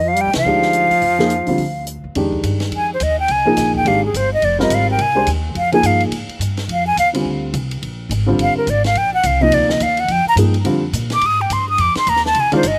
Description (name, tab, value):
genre	modal jazz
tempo	212 BPM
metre	4/4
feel	swing 60% on 8ths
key	F dorian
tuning	A4 = 440 Hz
part	breathy concert flute	melody	0.0-12.8 s	Ab4 to Eb6	-18 LUFS	equal	none
part	brilliant trombone	second line	0.0-1.8 s	F3 to G3	-25 LUFS	equal	none
part	upright bass	bass	0.0-12.8 s	F1 to C3	-24 LUFS	equal	none
part	compact cocktail drum kit	drums	0.2-12.7 s	hi-hat, kick drum, ride cymbal, snare drum	-30 LUFS	equal	none
part	dark baby grand piano	accompaniment	0.5-12.6 s	C3 to C5	-21 LUFS	equal	none
room	little or no reverb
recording	recorded outdoors, with no room sound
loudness	-17 LUFS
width	mono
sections	0.0-2.2 A section; 2.2-12.8 B section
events	band accent 0.3; flute solo 2.2-12.8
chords	0.0 Bb (rootless); 2.2 Fm9